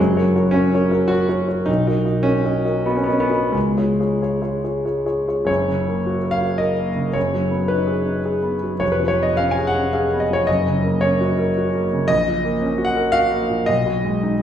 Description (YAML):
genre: classical, romantic character piece for solo piano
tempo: 86-116 BPM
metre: 3/4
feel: rubato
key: F# major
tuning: A4 = 438 Hz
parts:
  - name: warm concert grand piano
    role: solo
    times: 0.0-14.4 s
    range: E#1 to G#5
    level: -17 LUFS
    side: equal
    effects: none
room: wet recital hall reverb, RT60 1.6 s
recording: heard from further back in the room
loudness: -17 LUFS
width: side -9 dB against mid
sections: 0.0-5.5 A section; 5.5-14.4 B section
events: none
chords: 0.0 F#; 1.7 Bmaj7; 3.5 C#; 5.5 F#; 7.2 G#m7/F#; 8.8 C#7/E#; 10.5 F#; 12.1 F#/A#; 13.7 G#m/B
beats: 0.55 1.11 | 1.68 2.26 2.87 | 3.55 4.22 4.85 | 5.48 6.06 6.61 | 7.16 7.71 8.27 | 8.82 9.38 9.94 | 10.47 11.02 11.57 | 12.10 12.62 13.15 | 13.69 14.22